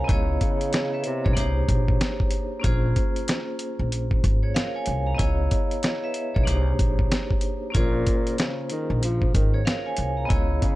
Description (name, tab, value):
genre	hip hop, boom-bap hip-hop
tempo	94 BPM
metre	4/4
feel	swing 61% on 16ths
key	Bb dorian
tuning	A4 = 439 Hz
part	vibraphone with hard mallets	accompaniment	0.0-10.8 s	Bb3 to Bb5	-28 LUFS	equal	high-pass filter, low-pass filter
part	upright bass	bass	0.0-10.6 s	Ab1 to Db2	-25 LUFS	equal	none
part	dusty soul sampler-style drum kit	drums	0.1-10.8 s	hi-hat, kick drum, snare drum	-23 LUFS	equal	none
part	breathy tenor saxophone	melody	0.4-1.5, 7.7-10.8 s	Bb2 to F3	-30 LUFS	equal	high-pass filter, low-pass filter, tape echo
room	small room ambience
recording	dry, gritty hardware recording, cassette tape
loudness	-21 LUFS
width	side -17 dB against mid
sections	0.0-10.8 A section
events	none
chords	0.1 Dbm7; 1.4 Cm7; 2.6 Bbm7; 5.2 Dbm7; 6.5 Cm7; 7.7 Bbm7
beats	| 0.09 0.72 1.36 2.00 | 2.64 3.28 3.92 4.55 | 5.19 5.83 6.47 7.11 | 7.75 8.38 9.02 9.66 | 10.30